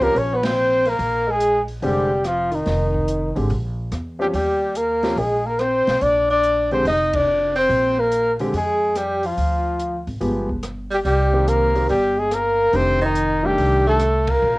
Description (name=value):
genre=jazz, small-group swing and bop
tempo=143 BPM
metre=4/4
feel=swing 67% on 8ths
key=Bb mixolydian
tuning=A4 = 439 Hz
part: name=mellow trumpet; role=melody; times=0.0-14.6 s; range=Eb4 to Eb5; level=-19 LUFS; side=left 1 dB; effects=cassette tape
part: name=breathy tenor saxophone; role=second line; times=0.0-14.6 s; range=Eb3 to Eb4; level=-23 LUFS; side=right 1 dB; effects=cassette tape
part: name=clear grand piano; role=accompaniment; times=0.0-14.0 s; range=D3 to G4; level=-24 LUFS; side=equal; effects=cassette tape
part: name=upright bass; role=bass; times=0.0-14.6 s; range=F1 to F2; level=-24 LUFS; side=equal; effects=none
part: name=open jazz drum kit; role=drums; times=0.0-14.3 s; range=hi-hat, kick drum, ride cymbal, rim click, snare drum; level=-32 LUFS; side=equal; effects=cassette tape
room=wet studio ambience, RT60 0.5 s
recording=home recording on cassette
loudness=-17 LUFS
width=side -21 dB against mid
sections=0.0-14.6 A section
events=band accent 0.4, 7.1, 14.2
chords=0.0 Eb13 (rootless); 1.0 Bb13; 2.7 Fm7; 3.5 Bbsus2; 4.3 Eb6; 6.0 Bb9; 9.4 Ddim; 10.2 G7b9; 11.1 Cm7; 12.7 F13